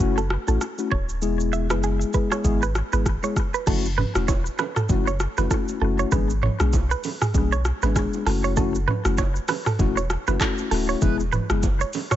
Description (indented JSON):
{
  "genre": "afrobeats",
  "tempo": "98 BPM",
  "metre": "4/4",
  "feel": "swing 58% on 16ths",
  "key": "F# minor",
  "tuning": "A4 = 439 Hz",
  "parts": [
    { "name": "mellow tine electric piano", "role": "accompaniment", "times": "0.0-11.6 s", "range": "G#3 to G#4", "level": "-27 LUFS", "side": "left 6 dB", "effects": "wide subtle chorus" },
    { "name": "punchy sub bass", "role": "bass", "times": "0.0-11.8 s", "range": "D1 to B1", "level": "-24 LUFS", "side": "equal", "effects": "none" },
    { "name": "afro-pop drum kit", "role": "drums", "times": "0.0-12.2 s", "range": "crash cymbal, handclaps, hi-hat, kick drum, rim click, shaker, toms", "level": "-25 LUFS", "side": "equal", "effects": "none" },
    { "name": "clean electric guitar", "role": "riff", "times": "0.2-12.2 s", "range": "G#4 to E5", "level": "-28 LUFS", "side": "right 8 dB", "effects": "ping-pong delay" },
    { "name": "congas and bongos", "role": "percussion", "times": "3.7-12.1 s", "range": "none", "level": "-33 LUFS", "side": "right 9 dB", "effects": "none" }
  ],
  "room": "little or no reverb",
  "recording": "nothing above 7.9 kHz",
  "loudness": "-20 LUFS",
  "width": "side -12 dB against mid",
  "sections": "0.0-3.7 A section; 3.7-12.2 B section",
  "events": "none",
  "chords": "0.0 F#m7; 1.2 E; 3.7 F#m7; 6.1 G#dim; 8.3 F#m7; 11.0 E",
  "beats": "0.00 0.61 | 1.22 1.83 2.45 3.06 | 3.67 4.28 4.89 5.51 | 6.12 6.73 7.34 7.96 | 8.57 9.18 9.79 10.40 | 11.02 11.63"
}